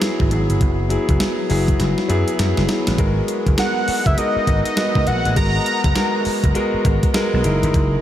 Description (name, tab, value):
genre	R&B, new jack swing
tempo	101 BPM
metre	4/4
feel	swing 61% on 16ths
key	unclear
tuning	A4 = 438 Hz
part	warm concert grand piano	accompaniment	0.0-8.0 s	F#3 to B4	-21 LUFS	left 1 dB	none
part	clean 12-bit digital drum machine	drums	0.0-7.9 s	hi-hat, kick drum, snare drum	-21 LUFS	equal	overdrive
part	vintage slap bass	bass	0.2-8.0 s	F#1 to F#2	-20 LUFS	equal	tube saturation
part	fat analog lead	melody	3.6-6.2 s	D#5 to A#5	-22 LUFS	equal	phaser, analog delay
room	moderate huge ambient reverb, RT60 8.1 s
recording	dreamy mix soaked in reverb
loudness	-16 LUFS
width	side -11 dB against mid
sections	0.0-3.0 A section; 3.0-8.0 B section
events	drum fill 1.8-3.0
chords	0.0 F#9sus4; 3.0 G#m9; 7.4 F#13